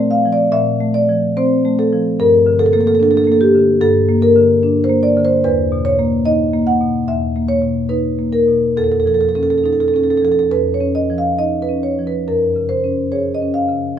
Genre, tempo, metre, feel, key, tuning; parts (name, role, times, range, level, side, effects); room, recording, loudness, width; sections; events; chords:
classical, contemporary piece for solo marimba; 68-75 BPM; 4/4; rubato; A4 = 440 Hz
marimba with medium mallets; solo; 0.0-14.0 s; E2 to Gb5; -13 LUFS; equal
moderate studio reverb, RT60 0.7 s; -13 LUFS; side -9 dB against mid
0.0-14.0 A section
0.0 Bbsus2; 2.2 Gmadd9; 5.4 E5; 8.8 Faug7; 12.3 Gbsus2